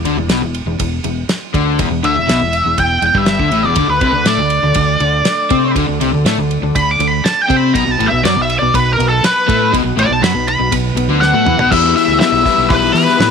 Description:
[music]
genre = classic rock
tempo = 121 BPM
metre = 4/4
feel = straight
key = E minor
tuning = A4 = 441 Hz
[part]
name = crunchy overdriven guitar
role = riff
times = 0.0-13.3 s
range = E2 to E4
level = -17 LUFS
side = left 14 dB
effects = none
[part]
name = crunchy overdriven guitar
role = riff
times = 0.0-11.7 s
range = E2 to C4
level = -20 LUFS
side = right 11 dB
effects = none
[part]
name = fingered electric bass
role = bass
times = 0.0-13.3 s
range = E1 to E3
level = -20 LUFS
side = right 1 dB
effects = none
[part]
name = damped 70s drum kit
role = drums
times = 0.1-13.3 s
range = crash cymbal, hi-hat, kick drum, ride cymbal, snare drum, toms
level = -20 LUFS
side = right 1 dB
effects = none
[part]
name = octave-fuzz lead guitar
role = melody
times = 2.1-13.3 s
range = A4 to D6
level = -15 LUFS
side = equal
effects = wah, distortion
[part]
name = mellow tonewheel organ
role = sustained chords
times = 3.8-13.3 s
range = F#3 to E5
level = -29 LUFS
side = right 1 dB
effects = overdrive, slow rotary speaker
[sound]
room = small room reverb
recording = 1960s-style stereo with parts hard left and right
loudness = -11 LUFS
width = side -6 dB against mid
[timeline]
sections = 0.0-11.7 A section; 11.7-13.3 B section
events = lead electric guitar solo 0.0-11.7; drum fill 11.2-11.7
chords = 0.0 Em; 3.8 D5; 7.7 B5; 11.7 Emadd9

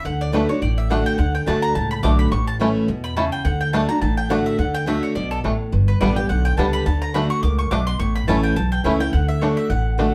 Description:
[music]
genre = bluegrass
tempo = 211 BPM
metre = 4/4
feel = swing 55% on 8ths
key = D major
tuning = A4 = 440 Hz
[part]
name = picked steel-string acoustic guitar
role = accompaniment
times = 0.0-10.1 s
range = E2 to G4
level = -24 LUFS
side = equal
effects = none
[part]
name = mandolin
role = stabs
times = 0.0-10.1 s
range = A4 to D6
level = -28 LUFS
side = equal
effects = none
[part]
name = upright bass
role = bass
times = 0.0-10.1 s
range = G1 to E2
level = -24 LUFS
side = equal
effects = none
[part]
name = bluegrass banjo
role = arpeggios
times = 0.3-10.1 s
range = G3 to E4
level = -27 LUFS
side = equal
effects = none
[sound]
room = wet studio reverb, RT60 0.5 s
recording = band playing live in one room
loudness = -20 LUFS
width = mono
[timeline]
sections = 0.0-4.6 A section; 4.6-10.1 A section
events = mandolin solo 0.0-10.1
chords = 0.1 D; 2.3 A; 3.5 D; 5.7 G; 6.9 D; 8.0 A; 9.1 D

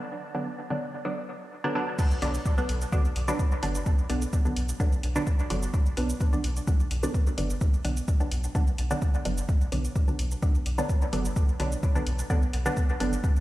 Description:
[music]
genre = dub techno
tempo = 128 BPM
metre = 4/4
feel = straight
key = B minor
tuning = A4 = 442 Hz
[part]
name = wind-like tuned noise texture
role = texture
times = 0.0-1.1 s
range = D5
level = -46 LUFS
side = right 4 dB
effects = built-in reverb, sidechain pumping
[part]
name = filtered dub chord stab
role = stabs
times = 0.3-13.1 s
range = D3 to D4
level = -30 LUFS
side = right 1 dB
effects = chorus, phaser, sidechain pumping, dub echo
[part]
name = deep house drum kit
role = drums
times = 2.0-13.4 s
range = crash cymbal, hi-hat, shaker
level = -40 LUFS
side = equal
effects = overdrive
[part]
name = electronic kick drum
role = drums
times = 2.0-13.3 s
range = none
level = -24 LUFS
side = equal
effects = overdrive
[part]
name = warm sub bass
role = bass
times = 2.2-13.2 s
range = F#1 to B1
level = -30 LUFS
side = equal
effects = sidechain pumping
[sound]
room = light reverb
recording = played on a big sound system in a bare room, stone room reverb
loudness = -24 LUFS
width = side -16 dB against mid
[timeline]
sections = 0.0-2.0 A section; 2.0-13.4 B section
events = none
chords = 0.0 Bm

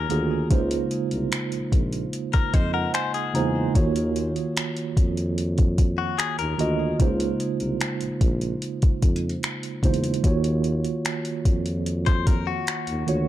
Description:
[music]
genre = contemporary R&B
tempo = 74 BPM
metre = 4/4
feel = straight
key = Eb dorian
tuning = A4 = 440 Hz
[part]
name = mellow tine electric piano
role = accompaniment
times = 0.0-13.3 s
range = Db3 to Bb5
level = -26 LUFS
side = right 3 dB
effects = medium stereo tremolo
[part]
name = direct-recorded clean electric guitar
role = arpeggios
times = 0.0-7.0, 12.1-13.3 s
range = Gb4 to C5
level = -29 LUFS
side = left 11 dB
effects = tape echo
[part]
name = mellow tuba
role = bass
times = 0.0-13.3 s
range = Bb1 to F2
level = -28 LUFS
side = equal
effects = none
[part]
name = smooth R&B drum kit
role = drums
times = 0.1-13.3 s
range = finger snaps, hi-hat, kick drum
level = -23 LUFS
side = equal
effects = none
[sound]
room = light reverb, digital ambience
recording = dark, warm production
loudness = -21 LUFS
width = side -13 dB against mid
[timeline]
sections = 0.0-13.3 A section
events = tine electric piano fill 2.1-3.8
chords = 0.0 Ebm9; 0.5 Dbmaj13; 3.8 Ebm9; 7.0 Dbmaj13; 10.2 Ebm9

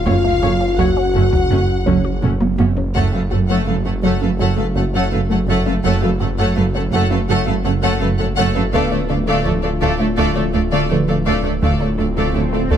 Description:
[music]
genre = cinematic, hybrid orchestral and electronic film score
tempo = 83 BPM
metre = 4/4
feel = straight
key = F# harmonic minor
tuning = A4 = 439 Hz
[part]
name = rich symphonic violin section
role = melody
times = 0.0-2.2 s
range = E#5 to F#5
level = -27 LUFS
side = right 2 dB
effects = none
[part]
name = dark symphonic violin section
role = second line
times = 0.0-12.8 s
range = B4 to F#5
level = -24 LUFS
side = left 5 dB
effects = none
[part]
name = mellow French horn section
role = sustained chords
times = 0.0-12.8 s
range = A3 to F#4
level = -24 LUFS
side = left 4 dB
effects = none
[part]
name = detuned saw bass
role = bass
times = 0.0-12.8 s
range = D1 to F#1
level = -22 LUFS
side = equal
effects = none
[part]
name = dark baby grand piano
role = texture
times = 0.0-12.8 s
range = B3 to D5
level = -30 LUFS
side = left 1 dB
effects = ping-pong delay
[part]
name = rich studio viola section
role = accompaniment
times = 0.1-12.8 s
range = A3 to C#5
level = -24 LUFS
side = right 1 dB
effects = none
[part]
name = resonant blip pluck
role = arpeggios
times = 0.1-12.8 s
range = D3 to F#4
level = -24 LUFS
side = right 1 dB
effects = phaser, ping-pong delay
[part]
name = dark symphonic cello section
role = bass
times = 0.1-12.8 s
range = D2 to F#2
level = -22 LUFS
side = right 3 dB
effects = none
[part]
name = rich symphonic double bass section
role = bass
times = 0.1-12.8 s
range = F#1 to D2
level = -22 LUFS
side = right 4 dB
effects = none
[part]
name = taiko ensemble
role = drums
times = 0.1-4.4, 8.7-12.8 s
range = none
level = -22 LUFS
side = equal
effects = none
[part]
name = swell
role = sound effects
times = 12.0-12.8 s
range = none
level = -25 LUFS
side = right 1 dB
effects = none
[sound]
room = light reverb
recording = close, detailed microphones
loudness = -15 LUFS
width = side -9 dB against mid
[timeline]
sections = 0.0-3.0 A section; 3.0-12.8 B section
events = drum fill 2.2-3.0; swell 12.0-12.8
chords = 0.1 F#m; 8.7 Dm

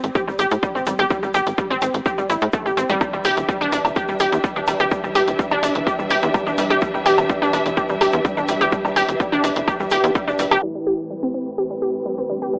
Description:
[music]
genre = melodic techno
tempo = 126 BPM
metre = 4/4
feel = straight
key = A minor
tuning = A4 = 436 Hz
[part]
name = tight sequencer bass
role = bass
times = 0.0-10.6 s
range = E1 to A2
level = -23 LUFS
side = equal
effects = sidechain pumping
[part]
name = punchy analog drum machine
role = drums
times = 0.0-10.7 s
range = crash cymbal, hi-hat, woodblock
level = -25 LUFS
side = equal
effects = sidechain pumping on hats, low-pass filter on hats, sidechain pumping on perc, low-pass filter on perc, sidechain pumping on cymbals, low-pass filter on cymbals, low-pass filter on room
[part]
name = egg shaker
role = percussion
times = 0.0-10.6 s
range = none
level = -42 LUFS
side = equal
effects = none
[part]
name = wide unison pluck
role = arpeggios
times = 0.2-12.6 s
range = G3 to G4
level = -20 LUFS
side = equal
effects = sidechain pumping, tape echo
[part]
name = electronic kick drum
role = drums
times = 0.2-10.3 s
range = none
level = -23 LUFS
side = equal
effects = overdrive
[part]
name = warm studio string section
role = sustained chords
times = 3.0-12.6 s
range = A2 to E5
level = -25 LUFS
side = equal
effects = sidechain pumping, low-pass filter
[part]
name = wide unison lead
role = melody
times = 10.6-12.6 s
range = D4 to E4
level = -31 LUFS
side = equal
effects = sidechain pumping, tape echo
[sound]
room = light reverb, digital ambience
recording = dry, gritty hardware recording, low-pass filter, AM radio sound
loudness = -17 LUFS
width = side -34 dB against mid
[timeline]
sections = 0.0-10.6 A section; 10.6-12.6 B section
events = filter sweep on analog synth lead 10.6-12.6; filter sweep on string section 10.6-12.6; filter sweep 10.6-12.6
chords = 0.0 A7(no3); 3.0 Em7; 10.6 Am7

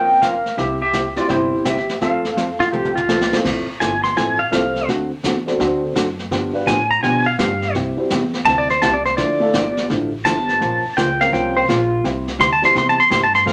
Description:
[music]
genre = country, western swing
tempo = 167 BPM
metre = 4/4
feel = swing 65% on 8ths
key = F major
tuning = A4 = 440 Hz
[part]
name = clean lap steel guitar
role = melody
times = 0.0-3.1 s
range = E4 to G5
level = -21 LUFS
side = equal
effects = none
[part]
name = dark upright piano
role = accompaniment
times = 0.0-12.7 s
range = G3 to C5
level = -25 LUFS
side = equal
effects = none
[part]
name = hollow-body jazz guitar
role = accompaniment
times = 0.0-13.5 s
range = C3 to C5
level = -25 LUFS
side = equal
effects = none
[part]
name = upright bass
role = bass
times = 0.0-13.5 s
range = F1 to B2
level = -30 LUFS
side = equal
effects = none
[part]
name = jazz brush drum kit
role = drums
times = 0.2-13.5 s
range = brushed snare drum, crash cymbal, hi-hat, kick drum, snare drum, toms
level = -28 LUFS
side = equal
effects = none
[part]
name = pedal steel guitar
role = second line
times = 2.6-13.5 s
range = F4 to C6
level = -19 LUFS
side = equal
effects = none
[sound]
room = wet studio reverb, RT60 0.5 s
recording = none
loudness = -18 LUFS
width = mono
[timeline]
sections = 0.0-3.4 A section; 3.4-13.5 B section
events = drum fill 2.7-3.4; pedal steel guitar solo 3.4-13.5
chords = 0.0 Bbmadd9; 0.6 C; 2.0 F; 3.4 Fmaj7; 4.9 D7; 6.3 G7; 7.7 C; 9.2 Dmadd9; 10.6 Bbmadd9; 12.0 C

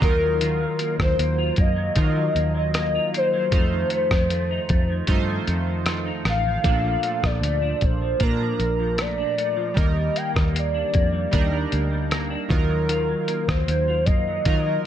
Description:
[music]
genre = indie pop, bedroom pop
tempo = 77 BPM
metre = 4/4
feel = straight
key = unclear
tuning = A4 = 439 Hz
[part]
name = warbly nostalgic lead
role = melody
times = 0.0-14.9 s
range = Bb4 to G5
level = -25 LUFS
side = left 1 dB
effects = analog chorus, tape echo
[part]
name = chorused retro synth keys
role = accompaniment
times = 0.0-14.9 s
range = F3 to Bb5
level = -30 LUFS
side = right 7 dB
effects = cassette tape
[part]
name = semi-hollow electric guitar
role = accompaniment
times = 0.0-14.9 s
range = F2 to G4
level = -29 LUFS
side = left 3 dB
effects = analog chorus, vibrato effect
[part]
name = vintage muted fingered electric bass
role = bass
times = 0.0-14.8 s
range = A1 to Eb3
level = -24 LUFS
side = equal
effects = none
[part]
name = lo-fi sampler-style drum kit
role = drums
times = 0.0-14.6 s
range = hi-hat, kick drum, rim click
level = -23 LUFS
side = equal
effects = none
[sound]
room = digital ambience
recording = none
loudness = -20 LUFS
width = side -10 dB against mid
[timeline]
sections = 0.0-14.9 A section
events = none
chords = 0.0 Ebmadd9; 3.5 F7; 6.6 Bbmaj7; 9.8 Ebmaj7; 12.5 Ebmadd9

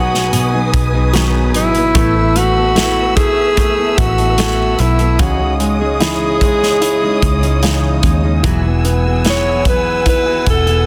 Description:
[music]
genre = pop ballad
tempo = 74 BPM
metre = 4/4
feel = straight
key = E major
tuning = A4 = 440 Hz
[part]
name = warm alto saxophone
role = melody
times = 0.0-10.9 s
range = E4 to C#5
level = -18 LUFS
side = equal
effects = none
[part]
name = clear baby grand piano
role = accompaniment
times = 0.0-10.9 s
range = B2 to E4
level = -23 LUFS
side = equal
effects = none
[part]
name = dark studio string section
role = sustained chords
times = 0.0-10.9 s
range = B4 to E6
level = -26 LUFS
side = equal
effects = none
[part]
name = fingerpicked steel-string acoustic guitar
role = arpeggios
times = 0.0-10.9 s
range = B2 to A4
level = -24 LUFS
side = equal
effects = none
[part]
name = vintage muted fingered electric bass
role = bass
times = 0.0-10.9 s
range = E1 to D#2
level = -20 LUFS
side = equal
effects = none
[part]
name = modern studio drum kit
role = drums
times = 0.1-10.9 s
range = hi-hat, kick drum, snare drum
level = -20 LUFS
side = equal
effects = none
[sound]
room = light reverb, small room ambience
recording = dense, heavily limited modern master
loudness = -14 LUFS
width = mono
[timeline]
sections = 0.0-10.9 A section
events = none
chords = 0.0 B6; 2.0 Asus2; 5.2 C#madd9; 8.4 Eadd9

